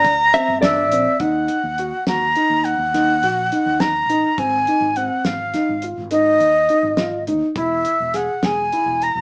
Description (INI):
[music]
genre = progressive instrumental, band music in an uneven meter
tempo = 208 BPM (eighths)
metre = 11/8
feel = straight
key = Eb dorian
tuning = A4 = 439 Hz
[part]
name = breathy bright concert flute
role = melody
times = 0.0-9.2 s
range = Eb5 to Bb5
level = -20 LUFS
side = equal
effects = none
[part]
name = dark concert grand piano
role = arpeggios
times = 0.0-9.1 s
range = C4 to G#4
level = -24 LUFS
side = equal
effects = none
[part]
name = fretless electric bass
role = bass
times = 0.0-9.2 s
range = E1 to Eb2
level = -34 LUFS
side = equal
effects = none
[part]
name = damped 70s drum kit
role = drums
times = 0.0-9.1 s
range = hi-hat, kick drum, snare drum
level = -27 LUFS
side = equal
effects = none
[part]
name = mellow electric guitar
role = second line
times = 0.3-1.2 s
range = D5 to Fb5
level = -21 LUFS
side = equal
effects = none
[sound]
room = moderate studio reverb, RT60 0.7 s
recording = band playing live in one room, small speaker sound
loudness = -18 LUFS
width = mono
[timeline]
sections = 0.0-1.2 A section; 1.2-9.2 B section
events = none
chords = 0.0 Gm; 1.2 Ebm; 4.4 Ab; 7.6 E